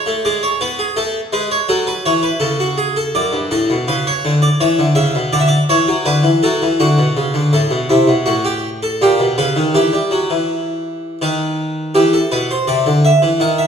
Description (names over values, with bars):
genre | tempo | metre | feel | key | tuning
classical, baroque-style two-part invention for harpsichord | 82 BPM | 3/4 | straight | D major, E minor from 7.5 s | A4 = 441 Hz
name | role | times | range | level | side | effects
harpsichord | solo | 0.0-13.7 s | F#2 to F#5 | -13 LUFS | equal | none
room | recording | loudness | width
wet recital hall reverb, RT60 1.6 s | recorded in a church or concert hall | -13 LUFS | side -7 dB against mid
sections
0.0-7.5 A section; 7.5-12.0 B section; 12.0-13.7 C section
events
none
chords
0.2 G#dim; 1.0 A; 2.4 A/C#; 3.1 D/F#; 4.6 Bsus24; 5.3 D; 7.5 F#dim/A; 9.0 D#7b13/A#; 9.7 Em; 11.2 B/D#; 12.0 Em